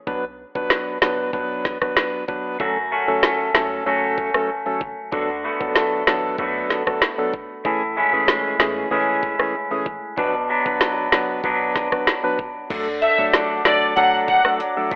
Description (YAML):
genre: dancehall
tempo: 95 BPM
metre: 4/4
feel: straight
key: unclear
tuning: A4 = 442 Hz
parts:
  - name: percussive organ stab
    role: accompaniment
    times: 0.1-14.9 s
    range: E3 to B4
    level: -23 LUFS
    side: equal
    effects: chorus
  - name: clean 808-style bass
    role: bass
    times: 0.1-15.0 s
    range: F#1 to E2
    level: -44 LUFS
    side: equal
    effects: none
  - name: island pop drum kit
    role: drums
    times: 0.1-15.0 s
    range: crash cymbal, hi-hat, kick drum, rim click, snare drum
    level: -20 LUFS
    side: equal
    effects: none
  - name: electric guitar through a small old amp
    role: arpeggios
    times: 2.6-15.0 s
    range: F#2 to F#4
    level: -22 LUFS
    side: equal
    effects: none
  - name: glassy FM pad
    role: sustained chords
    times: 13.0-15.0 s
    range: A4 to D6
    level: -28 LUFS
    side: left 1 dB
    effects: ensemble chorus, built-in reverb
  - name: warm studio violin section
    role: melody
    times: 13.0-14.4 s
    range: D5 to F#5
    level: -17 LUFS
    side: equal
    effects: none
room: light reverb, digital ambience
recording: dry, gritty hardware recording, telephone sound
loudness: -18 LUFS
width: side -25 dB against mid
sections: 0.0-12.7 A section; 12.7-15.0 B section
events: none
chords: 0.1 Bm; 2.6 F#m; 5.1 D6; 7.7 Amaj7; 10.2 Bm; 12.7 D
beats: | 0.07 0.70 1.33 1.97 | 2.60 3.23 3.86 4.49 | 5.12 5.75 6.39 7.02 | 7.65 8.28 8.91 9.54 | 10.18 10.81 11.44 12.07 | 12.70 13.33 13.97 14.60